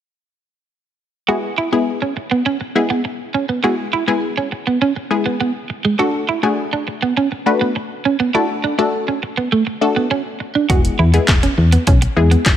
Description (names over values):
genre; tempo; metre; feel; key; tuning
dance-pop; 102 BPM; 4/4; straight; E mixolydian; A4 = 440 Hz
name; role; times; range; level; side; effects
wide unison pluck; accompaniment; 1.3-12.6 s; G#3 to B4; -19 LUFS; left 3 dB; sidechain pumping
electric guitar at the edge of break-up; riff; 1.3-12.5 s; G#3 to F#4; -19 LUFS; right 5 dB; analog chorus
solid FM bass; bass; 10.7-12.6 s; E1 to E2; -14 LUFS; left 1 dB; sidechain pumping
punchy analog drum machine; drums; 10.7-12.6 s; handclaps, hi-hat, kick drum, snare drum; -15 LUFS; left 1 dB; none
room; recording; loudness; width
light reverb, digital ambience; none; -15 LUFS; side -10 dB against mid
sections
1.3-12.6 A section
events
none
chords
1.3 E; 6.0 D; 10.7 E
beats
| 1.28 1.87 2.46 3.05 | 3.64 4.23 4.81 5.40 | 5.99 6.58 7.17 7.75 | 8.34 8.93 9.52 10.11 | 10.70 11.29 11.87 12.46